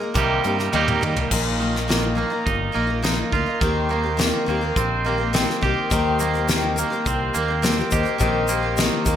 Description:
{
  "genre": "folk rock and heartland rock",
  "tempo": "104 BPM",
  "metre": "4/4",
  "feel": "straight",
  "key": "unclear",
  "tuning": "A4 = 438 Hz",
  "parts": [
    { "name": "picked twelve-string acoustic guitar", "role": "accompaniment", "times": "0.0-9.2 s", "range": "Bb2 to Ab4", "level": "-24 LUFS", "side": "left 3 dB", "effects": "none" },
    { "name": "twangy electric guitar", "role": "riff", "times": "0.0-9.2 s", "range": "Bb2 to Ab4", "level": "-24 LUFS", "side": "right 7 dB", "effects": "none" },
    { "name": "fingered electric bass", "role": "bass", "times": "0.2-9.2 s", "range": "G1 to Eb3", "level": "-26 LUFS", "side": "equal", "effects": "none" },
    { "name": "soft brush drum kit", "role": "drums", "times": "0.2-9.2 s", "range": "crash cymbal, hi-hat, kick drum, snare drum, toms", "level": "-24 LUFS", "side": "left 1 dB", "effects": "gated reverb" },
    { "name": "tonewheel organ", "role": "sustained chords", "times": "1.3-9.2 s", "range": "Eb4 to Eb5", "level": "-31 LUFS", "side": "equal", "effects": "slow rotary speaker" },
    { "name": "overdriven reed electric piano", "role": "accompaniment", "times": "5.9-9.1 s", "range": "G4 to Eb5", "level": "-29 LUFS", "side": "left 6 dB", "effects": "fast tremolo" },
    { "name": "tube shaker", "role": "percussion", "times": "5.9-9.2 s", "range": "none", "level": "-32 LUFS", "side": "left 8 dB", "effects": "none" }
  ],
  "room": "moderate plate reverb, RT60 1.1 s, small room ambience",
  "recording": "bright 1980s-style digital production",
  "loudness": "-19 LUFS",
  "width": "side -9 dB against mid",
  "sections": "0.0-1.3 A section; 1.3-9.2 B section",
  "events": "drum fill 0.7-1.3",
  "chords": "0.2 Cm7; 1.3 Bbsus4; 3.6 Eb6",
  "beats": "0.15 0.73 | 1.31 1.89 2.46 3.04 | 3.62 4.19 4.77 5.34 | 5.91 6.49 7.06 7.63 | 8.20 8.77"
}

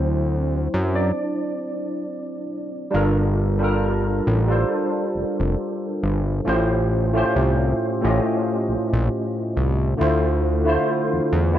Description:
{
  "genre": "R&B, neo-soul",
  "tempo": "68 BPM",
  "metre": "4/4",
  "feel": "swing 55% on 16ths",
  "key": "G dorian",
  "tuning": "A4 = 444 Hz",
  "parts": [
    { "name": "barky tine electric piano", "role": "accompaniment", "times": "0.0-11.6 s", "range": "A2 to Eb5", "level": "-22 LUFS", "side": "equal", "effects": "overdrive, ensemble chorus" },
    { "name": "fat analog bass", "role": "bass", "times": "0.0-11.6 s", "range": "F1 to F#2", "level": "-21 LUFS", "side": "equal", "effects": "none" }
  ],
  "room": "little or no reverb",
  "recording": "dry, close 1970s-style studio recording",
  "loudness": "-19 LUFS",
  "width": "side -11 dB against mid",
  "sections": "0.0-2.9 A section; 2.9-11.6 B section",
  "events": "tine electric piano solo 0.0-2.9",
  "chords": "0.0 D7; 2.9 Gm9; 6.5 A7alt; 10.0 Dm9",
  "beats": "0.28 1.16 2.04 | 2.92 3.80 4.69 5.57 | 6.45 7.33 8.22 9.10 | 9.98 10.86"
}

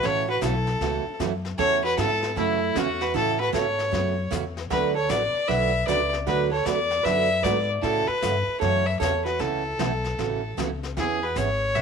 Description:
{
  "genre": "country, western swing",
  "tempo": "154 BPM",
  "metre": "4/4",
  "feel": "swing 64% on 8ths",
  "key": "A major",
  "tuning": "A4 = 440 Hz",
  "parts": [
    { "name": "clear fiddle", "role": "melody", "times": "0.0-11.8 s", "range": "E4 to E5", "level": "-25 LUFS", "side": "left 2 dB", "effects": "none" },
    { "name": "vintage hollow-body jazz guitar", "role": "second line", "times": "0.0-11.8 s", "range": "A3 to B4", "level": "-30 LUFS", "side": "right 12 dB", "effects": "none" },
    { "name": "picked steel-string acoustic guitar", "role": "accompaniment", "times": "0.0-11.8 s", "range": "C#3 to B4", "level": "-29 LUFS", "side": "right 12 dB", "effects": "none" },
    { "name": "upright bass", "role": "bass", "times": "0.0-11.8 s", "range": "G#1 to A2", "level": "-30 LUFS", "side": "left 2 dB", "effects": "none" },
    { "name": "jazz brush drum kit", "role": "drums", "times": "0.0-11.8 s", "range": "brushed snare drum, hi-hat, kick drum, snare drum", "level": "-35 LUFS", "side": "left 8 dB", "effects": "none" }
  ],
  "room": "light reverb, small room ambience",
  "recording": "1960s-style stereo with parts hard left and right",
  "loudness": "-22 LUFS",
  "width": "side -6 dB against mid",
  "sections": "0.0-11.8 A section",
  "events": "none",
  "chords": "0.0 A6; 4.7 D6; 7.8 A6; 11.0 E6",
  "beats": "| 0.02 0.41 0.80 1.20 | 1.58 1.98 2.37 2.75 | 3.15 3.54 3.93 4.32 | 4.71 5.10 5.49 5.88 | 6.27 6.66 7.05 7.44 | 7.83 8.23 8.62 9.01 | 9.40 9.79 10.19 10.58 | 10.97 11.36 11.75"
}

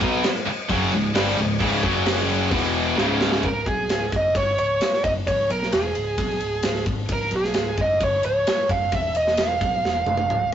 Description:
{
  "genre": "hard rock",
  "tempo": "131 BPM",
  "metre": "4/4",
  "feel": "straight",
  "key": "unclear",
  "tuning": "A4 = 441 Hz",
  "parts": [
    { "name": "distorted electric guitar", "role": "riff", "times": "0.0-3.4 s", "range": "Db2 to Cb4", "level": "-27 LUFS", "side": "equal", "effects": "overdrive" },
    { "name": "heavy high-gain guitar", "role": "riff", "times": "0.0-3.4 s", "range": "Db2 to Cb4", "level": "-25 LUFS", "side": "left 6 dB", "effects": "distortion" },
    { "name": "heavy high-gain guitar", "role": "riff", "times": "0.0-3.4 s", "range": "Db2 to Cb4", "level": "-25 LUFS", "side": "right 5 dB", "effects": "distortion" },
    { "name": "picked electric bass", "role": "bass", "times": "0.0-10.5 s", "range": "Db1 to Cb2", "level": "-30 LUFS", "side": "equal", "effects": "none" },
    { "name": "tight metal drum kit", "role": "drums", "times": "0.0-10.5 s", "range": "crash cymbal, kick drum, ride cymbal, snare drum, toms", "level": "-25 LUFS", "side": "equal", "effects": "none" },
    { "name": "bluesy overdriven lead guitar", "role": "melody", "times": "3.4-10.5 s", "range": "Ab4 to F5", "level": "-22 LUFS", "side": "right 1 dB", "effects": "distortion" }
  ],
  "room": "moderate stone room reverb, RT60 0.9 s",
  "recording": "rough rehearsal-room recording, warm saturation, nothing above 7.8 kHz",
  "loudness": "-19 LUFS",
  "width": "side -9 dB against mid",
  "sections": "0.0-3.4 A section; 3.4-10.5 B section",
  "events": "drum fill 3.0-3.4, 9.8-10.5",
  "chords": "0.0 Db5; 1.8 Gb5; 2.5 E5; 3.0 Db5; 8.9 Ebsus2; 9.6 Db",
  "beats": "0.24 0.70 1.15 | 1.61 2.07 2.52 2.98 | 3.44 3.89 4.35 4.81 | 5.26 5.72 6.18 6.64 | 7.10 7.55 8.01 8.47 | 8.93 9.39 9.85 10.30"
}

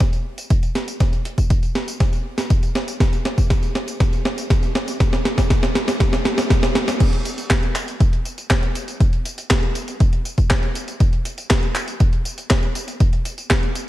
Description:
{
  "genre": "italo disco",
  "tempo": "120 BPM",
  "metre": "4/4",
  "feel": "straight",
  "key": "none",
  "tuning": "none",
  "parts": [
    { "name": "clean 12-bit digital drum machine", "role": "drums", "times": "0.0-13.9 s", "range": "crash cymbal, handclaps, hi-hat, snare drum, tambourine", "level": "-22 LUFS", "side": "equal", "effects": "overdrive" },
    { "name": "electronic kick drum", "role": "drums", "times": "0.0-13.6 s", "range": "none", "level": "-17 LUFS", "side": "equal", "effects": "none" }
  ],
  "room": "light reverb",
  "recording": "dark, warm production",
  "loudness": "-17 LUFS",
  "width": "side -15 dB against mid",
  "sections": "0.0-7.0 A section; 7.0-13.9 B section",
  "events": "drum fill 0.0-7.0",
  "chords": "none",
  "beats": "0.00 0.50 | 1.00 1.50 2.00 2.50 | 3.00 3.50 4.00 4.50 | 5.00 5.50 6.00 6.50 | 7.00 7.50 8.00 8.50 | 9.00 9.50 10.00 10.50 | 11.00 11.50 12.00 12.50 | 13.00 13.50"
}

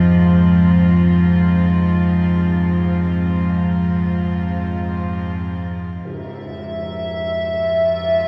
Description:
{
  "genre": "dark ambient drone",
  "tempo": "free time",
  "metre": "none",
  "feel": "none",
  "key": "unclear",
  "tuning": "A4 = 439 Hz",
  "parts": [
    { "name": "warm studio cello section", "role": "sustained chords", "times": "0.0-8.3 s", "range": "Ab2 to F4", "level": "-28 LUFS", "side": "equal", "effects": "shimmer reverb" },
    { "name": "deep rumbling drone", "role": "drone", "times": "0.0-8.3 s", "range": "F2 to F3", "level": "-18 LUFS", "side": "equal", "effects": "built-in reverb" },
    { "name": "tam-tam", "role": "percussion", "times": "6.0-6.3 s", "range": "none", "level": "-36 LUFS", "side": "equal", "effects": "low-pass filter on cymbals" },
    { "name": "icy glass pad", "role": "texture", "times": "6.7-8.3 s", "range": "E5", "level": "-22 LUFS", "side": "equal", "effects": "chorus, built-in reverb, shimmer reverb" }
  ],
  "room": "wet cathedral reverb, RT60 7.1 s",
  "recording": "none",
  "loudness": "-17 LUFS",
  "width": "mono",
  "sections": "0.0-6.0 A section; 6.0-8.3 B section",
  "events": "none",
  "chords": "0.0 Fm",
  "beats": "free time"
}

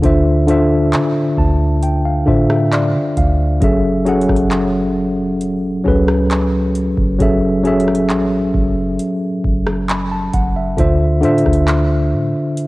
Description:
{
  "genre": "contemporary R&B",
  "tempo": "67 BPM",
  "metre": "4/4",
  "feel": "straight",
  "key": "F# minor",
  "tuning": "A4 = 440 Hz",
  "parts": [
    { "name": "mellow tine electric piano", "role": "accompaniment", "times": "0.0-12.7 s", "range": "D3 to B5", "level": "-15 LUFS", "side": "equal", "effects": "medium stereo tremolo, cassette tape" },
    { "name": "soft 808-style bass", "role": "bass", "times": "0.0-12.3 s", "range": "F#1 to D3", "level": "-19 LUFS", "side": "equal", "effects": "none" },
    { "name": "booming analog drum machine", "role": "drums", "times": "0.0-12.7 s", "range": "handclaps, hi-hat, kick drum, rim click", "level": "-19 LUFS", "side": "equal", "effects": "cassette tape" }
  ],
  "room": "light reverb, digital ambience",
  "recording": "home recording on cassette",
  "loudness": "-13 LUFS",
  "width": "side -20 dB against mid",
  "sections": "0.0-12.7 A section",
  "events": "tine electric piano fill 0.9-3.6",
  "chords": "0.0 Dm9; 3.6 F#m9; 10.8 Dm9",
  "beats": "| 0.04 0.93 1.83 2.72 | 3.62 4.51 5.41 6.30 | 7.20 8.10 8.99 9.89 | 10.78 11.68 12.57"
}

